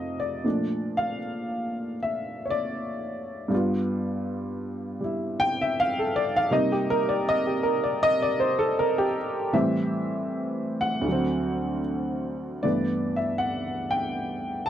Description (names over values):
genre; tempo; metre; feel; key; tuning
solo jazz; 79 BPM; 4/4; swing 68% on 8ths, rubato; unclear; A4 = 440 Hz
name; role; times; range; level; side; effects
warm upright piano; solo; 0.0-14.7 s; D2 to A5; -24 LUFS; equal; none
room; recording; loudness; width
light reverb; dry, close 1970s-style studio recording; -24 LUFS; side -10 dB against mid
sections
0.0-12.6 A section; 12.6-14.7 B section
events
upright piano solo 0.0-12.6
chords
0.4 Bbmaj7; 3.5 G7; 6.5 Cm7; 9.5 Am7; 11.1 D7; 12.6 G69